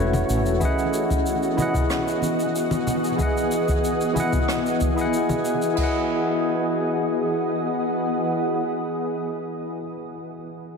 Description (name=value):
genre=sunset chillout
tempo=93 BPM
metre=4/4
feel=straight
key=E major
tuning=A4 = 440 Hz
part: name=barky tine electric piano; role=accompaniment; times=0.0-10.8 s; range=E3 to F#5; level=-25 LUFS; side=left 1 dB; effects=auto-pan, tape echo
part: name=shimmering ambient pad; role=sustained chords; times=0.0-9.1 s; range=E3 to D#5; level=-25 LUFS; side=equal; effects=chorus, built-in reverb
part: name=mellow fretless electric bass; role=bass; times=0.0-0.6 s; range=E1 to A1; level=-23 LUFS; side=equal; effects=wide subtle chorus
part: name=jazz brush drum kit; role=drums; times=0.1-5.9 s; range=crash cymbal, rim click, shaker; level=-34 LUFS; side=right 1 dB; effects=tape echo
part: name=congas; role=percussion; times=0.1-5.4 s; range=none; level=-30 LUFS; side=left 2 dB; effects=tape echo
part: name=electronic kick drum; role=drums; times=0.6-5.9 s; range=none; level=-25 LUFS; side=equal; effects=none
room=wet echo chamber reverb, RT60 2.4 s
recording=echo-heavy mix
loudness=-21 LUFS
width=side -5 dB against mid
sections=0.0-5.8 A section; 5.8-8.4 B section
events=none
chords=0.0 A69; 0.6 Emaj7